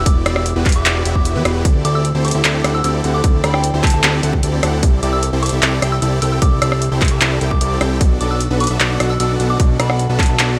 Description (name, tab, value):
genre	future bass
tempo	151 BPM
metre	4/4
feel	half-time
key	unclear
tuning	A4 = 440 Hz
part	soft synth bell	melody	0.0-10.4 s	F#5 to E6	-27 LUFS	equal	chorus, phaser, sidechain pumping, dub echo
part	supersaw chords	riff	0.0-10.6 s	B3 to G5	-24 LUFS	equal	cassette tape, sidechain pumping
part	fat analog bass	bass	0.0-10.6 s	E1 to E2	-20 LUFS	equal	sidechain pumping
part	big-room dance drum kit	drums	0.1-10.5 s	handclaps, hi-hat, rim click	-21 LUFS	equal	small room reverb
part	electronic kick drum	drums	0.1-10.3 s	none	-17 LUFS	equal	small room reverb
room	light reverb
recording	none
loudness	-16 LUFS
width	mono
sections	0.0-10.6 A section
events	none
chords	0.0 Em9; 1.6 D9sus4; 4.8 C69; 8.0 Bm7